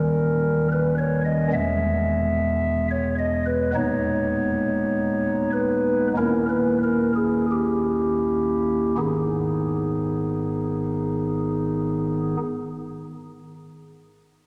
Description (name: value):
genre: classical, chorale-style piece for pipe organ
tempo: 40-58 BPM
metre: 4/4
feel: rubato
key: G# minor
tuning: A4 = 440 Hz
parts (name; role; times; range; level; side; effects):
- chamber organ, stopped flute; solo; 0.0-12.4 s; D#1 to E5; -23 LUFS; equal; none
room: wet church reverb, RT60 3.3 s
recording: none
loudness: -23 LUFS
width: mono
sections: 0.0-9.0 A section; 9.0-14.5 B section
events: slowing down 0.0-9.0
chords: 0.0 D#7; 1.5 E; 3.8 G#m/D#; 6.2 D#7b9; 9.0 G#m